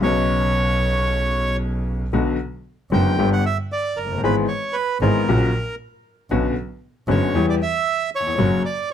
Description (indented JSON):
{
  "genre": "tango",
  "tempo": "115 BPM",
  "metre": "4/4",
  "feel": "rubato",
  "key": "B harmonic minor",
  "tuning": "A4 = 440 Hz",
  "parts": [
    { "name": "bandoneon", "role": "melody", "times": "0.0-8.9 s", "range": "A#4 to G5", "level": "-23 LUFS", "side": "right 3 dB", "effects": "plate reverb" },
    { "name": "clear upright piano", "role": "accompaniment", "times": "0.0-8.6 s", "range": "E#1 to G#4", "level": "-21 LUFS", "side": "left 4 dB", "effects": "none" },
    { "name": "dark double bass", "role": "bass", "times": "0.0-8.6 s", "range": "F#1 to E2", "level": "-23 LUFS", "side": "right 1 dB", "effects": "none" }
  ],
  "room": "light reverb",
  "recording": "close, detailed microphones",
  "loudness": "-18 LUFS",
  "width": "side -9 dB against mid",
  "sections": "0.0-2.1 A section; 2.1-8.9 B section",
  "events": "none",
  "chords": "0.0 Badd9; 2.1 Bm; 3.2 G; 4.2 E/G#; 5.3 F#/A#; 6.3 Bmadd9; 7.3 Em; 8.4 F#",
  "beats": "| 0.02 0.54 1.07 1.60 | 2.13 2.66 3.19 3.71 | 4.23 4.75 5.27 5.79 | 6.31 6.83 7.35 7.87 | 8.39 8.91"
}